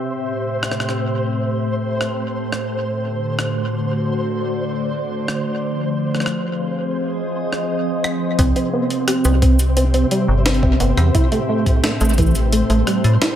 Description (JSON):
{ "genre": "IDM", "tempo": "87 BPM", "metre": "4/4", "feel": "straight", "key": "unclear", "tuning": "A4 = 440 Hz", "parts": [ { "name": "glassy FM pad", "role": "sustained chords", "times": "0.0-13.4 s", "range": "A2 to E5", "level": "-22 LUFS", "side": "equal", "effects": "ensemble chorus, built-in reverb" }, { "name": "flickering grainy texture", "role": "texture", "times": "0.0-13.4 s", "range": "C5", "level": "-28 LUFS", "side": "right 1 dB", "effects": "built-in reverb" }, { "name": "jungle sampler-style drum kit", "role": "drums", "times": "0.6-13.4 s", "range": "hi-hat, rim click, shaker, snare drum", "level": "-24 LUFS", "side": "equal", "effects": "small room ambience, dub echo" }, { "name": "deep acid bass", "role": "arpeggios", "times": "8.4-13.3 s", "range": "E3 to G4", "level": "-20 LUFS", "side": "right 2 dB", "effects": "analog chorus, vintage 12-bit sampler grit, dub echo" }, { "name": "metallic FM bass", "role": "bass", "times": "8.4-13.2 s", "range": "G1 to A2", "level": "-16 LUFS", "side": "equal", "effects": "none" }, { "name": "electronic kick drum", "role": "drums", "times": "8.4-12.3 s", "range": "none", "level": "-17 LUFS", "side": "equal", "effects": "small room ambience" } ], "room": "moderate spring reverb, RT60 2.2 s", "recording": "echo-heavy mix", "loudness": "-17 LUFS", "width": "side -10 dB against mid", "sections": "0.0-8.4 A section; 8.4-13.4 B section", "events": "none", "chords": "0.1 Am7; 2.9 D; 5.6 Fm7; 8.4 C; 11.1 Am7" }